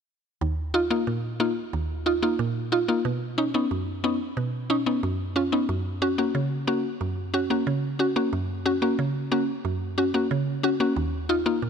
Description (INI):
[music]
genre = dancehall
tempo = 91 BPM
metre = 4/4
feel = straight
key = Eb minor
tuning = A4 = 440 Hz
[part]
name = mallet-like synth pluck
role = solo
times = 0.4-11.7 s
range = Eb2 to Gb4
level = -23 LUFS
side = equal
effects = chorus
[sound]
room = moderate lush hall reverb, RT60 3.2 s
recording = none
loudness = -23 LUFS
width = side -7 dB against mid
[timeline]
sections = 0.4-11.7 A section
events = none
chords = 0.4 Ebsus2; 3.1 Badd9; 5.7 Gb; 11.0 Ebsus2